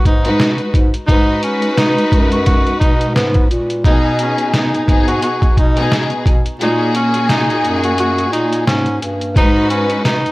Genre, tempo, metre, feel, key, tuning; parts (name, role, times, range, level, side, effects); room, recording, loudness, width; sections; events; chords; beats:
hip hop, boom-bap hip-hop; 87 BPM; 4/4; swing 56% on 16ths; G# minor; A4 = 440 Hz
breathy tenor saxophone; melody; 0.1-10.3 s; B3 to F#4; -19 LUFS; equal; high-pass filter, low-pass filter, tape echo
warm bass clarinet; bass; 0.1-10.3 s; F#2 to B2; -19 LUFS; equal; transformer saturation
trip hop sampler-style drum kit; drums; 0.1-10.3 s; hi-hat, kick drum, snare drum; -14 LUFS; equal
warm symphonic string section; accompaniment; 0.2-10.3 s; A#2 to B4; -18 LUFS; left 1 dB; cassette tape, high-pass filter, low-pass filter
studio reverb; dry, gritty hardware recording, vinyl crackle; -12 LUFS; side -20 dB against mid
0.0-10.3 A section
kick muted 6.6-9.4
0.0 G#m7; 3.8 B6; 6.6 F#add9; 9.4 G#m7
0.40 | 1.08 1.77 2.46 3.15 | 3.84 4.53 5.22 5.91 | 6.60 7.29 7.98 8.67 | 9.36 10.05